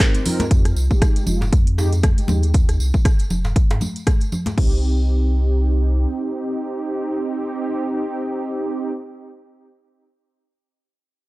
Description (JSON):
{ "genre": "afro house", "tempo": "118 BPM", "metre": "4/4", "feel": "swing 57% on 16ths", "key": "C minor", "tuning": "A4 = 440 Hz", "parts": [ { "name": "warm analog pad", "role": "sustained chords", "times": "0.0-0.5 s", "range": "none", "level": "barely audible", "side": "none", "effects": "none" }, { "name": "mellow synth brass", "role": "stabs", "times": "0.0-8.9 s", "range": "Ab3 to Bb4", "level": "-25 LUFS", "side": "right 1 dB", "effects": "chorus, sidechain pumping, analog delay" }, { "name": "electronic kick drum", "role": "drums", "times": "0.0-4.7 s", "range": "none", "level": "-16 LUFS", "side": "equal", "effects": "none" }, { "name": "house drum kit", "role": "drums", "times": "0.0-4.7 s", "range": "crash cymbal, handclaps, hi-hat, rim click", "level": "-26 LUFS", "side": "equal", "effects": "none" }, { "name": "congas", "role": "percussion", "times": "0.0-4.6 s", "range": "none", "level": "-26 LUFS", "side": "left 1 dB", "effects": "none" }, { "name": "djembe", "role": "percussion", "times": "0.0-4.6 s", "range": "none", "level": "-31 LUFS", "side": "right 1 dB", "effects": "none" }, { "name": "tambourine", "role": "percussion", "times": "0.0-4.6 s", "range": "none", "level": "-36 LUFS", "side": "right 3 dB", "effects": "none" }, { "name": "warm sub bass", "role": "bass", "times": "0.5-6.1 s", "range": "F1 to Ab2", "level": "-18 LUFS", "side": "equal", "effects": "tube saturation, sidechain pumping" } ], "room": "small room ambience", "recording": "dry, gritty hardware recording", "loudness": "-17 LUFS", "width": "side -20 dB against mid", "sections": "0.5-4.6 A section; 4.6-8.6 B section", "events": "none", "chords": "0.0 Cm; 0.5 Fm7; 4.6 Cm", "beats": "0.00 | 0.51 1.02 1.52 2.03 | 2.54 3.05 3.56 4.07 | 4.58 5.08 5.59 6.10 | 6.61 7.12 7.63 8.13" }